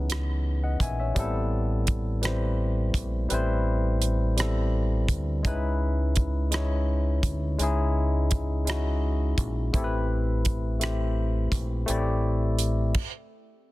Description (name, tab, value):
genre	slow six-eight R&B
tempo	56 BPM (dotted quarters)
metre	6/8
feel	straight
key	unclear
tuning	A4 = 440 Hz
part	barky tine electric piano	accompaniment	0.0-13.0 s	E3 to G#5	-30 LUFS	left 2 dB	overdrive
part	deep dub fingered electric bass	bass	0.0-12.9 s	A1 to D2	-26 LUFS	equal	none
part	damped 70s drum kit	drums	0.1-13.1 s	crash cymbal, hi-hat, kick drum, rim click	-28 LUFS	equal	soft clipping on snare
room	small room ambience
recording	dense, heavily limited modern master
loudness	-24 LUFS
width	side -18 dB against mid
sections	0.0-13.7 A section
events	stop 13.0-13.7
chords	0.0 C#m9; 1.2 Am9; 5.5 C#m9; 9.7 Am9